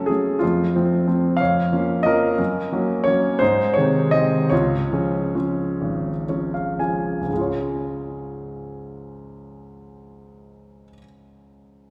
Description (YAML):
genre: classical, lyrical solo piano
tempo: 38-62 BPM (dotted quarters)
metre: 6/8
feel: rubato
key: Db major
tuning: A4 = 440 Hz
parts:
  - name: warm grand piano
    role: solo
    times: 0.0-11.9 s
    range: Ab1 to Ab5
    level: -22 LUFS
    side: equal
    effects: none
room: wet scoring stage reverb, RT60 2.1 s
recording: heard from further back in the room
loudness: -21 LUFS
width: mono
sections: 0.0-7.3 A section; 7.3-11.9 B section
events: slowing down 2.4-7.3; grand piano fill 5.8-7.3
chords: 0.4 F; 1.4 Bbm/F; 2.4 Gb; 3.4 Ab; 4.5 Db